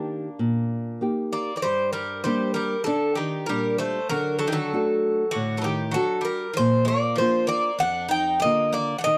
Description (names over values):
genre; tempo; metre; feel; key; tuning
greek folk, Greek bouzouki band; 97 BPM; 4/4; straight; unclear; A4 = 440 Hz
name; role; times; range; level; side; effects
Greek bouzouki; melody; 0.0-9.2 s; D4 to G5; -26 LUFS; equal; none
Greek bouzouki; second line; 0.0-9.2 s; D3 to Eb4; -34 LUFS; equal; none
nylon-string guitar; accompaniment; 0.0-9.2 s; F2 to G4; -29 LUFS; equal; none
room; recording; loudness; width
light reverb; dry, close 1970s-style studio recording; -24 LUFS; mono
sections
0.0-1.6 A section; 1.6-9.2 B section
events
none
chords
0.0 Eb; 1.6 Gm; 4.1 D; 6.6 Bb